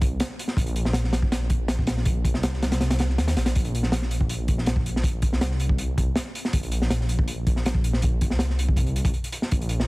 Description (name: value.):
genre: drum and bass, jungle.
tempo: 161 BPM.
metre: 4/4.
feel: straight.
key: unclear.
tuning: A4 = 440 Hz.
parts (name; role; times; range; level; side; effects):
dark detuned saw bass; bass; 0.0-9.9 s; Bb1 to Eb2; -25 LUFS; equal; none.
crunchy breakbeat drum kit; drums; 0.0-9.9 s; hi-hat, kick drum, snare drum; -24 LUFS; equal; none.
room: little or no reverb.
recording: dense, heavily limited modern master, vinyl crackle.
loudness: -22 LUFS.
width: side -22 dB against mid.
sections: 0.0-9.9 A section.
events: kick drops out 2.8-3.6.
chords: none.